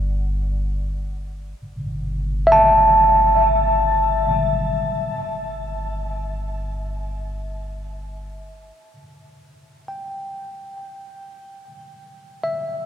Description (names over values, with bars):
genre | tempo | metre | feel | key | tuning
ambient | free time | none | none | unclear | A4 = 440 Hz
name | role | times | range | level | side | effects
tine electric piano | arpeggios | 0.0-12.9 s | E5 to A5 | -18 LUFS | equal | diffuse ambient delay, shimmer reverb
warm sub bass | bass | 0.0-8.7 s | G1 | -26 LUFS | equal | none
room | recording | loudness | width
wet cathedral reverb, RT60 5.3 s | dark, warm production | -17 LUFS | side -9 dB against mid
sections
0.0-8.8 A section; 8.8-12.9 B section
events
fade-out on sub bass 0.0-8.8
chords
0.0 G5; 1.6 Emadd11/G; 5.2 N.C.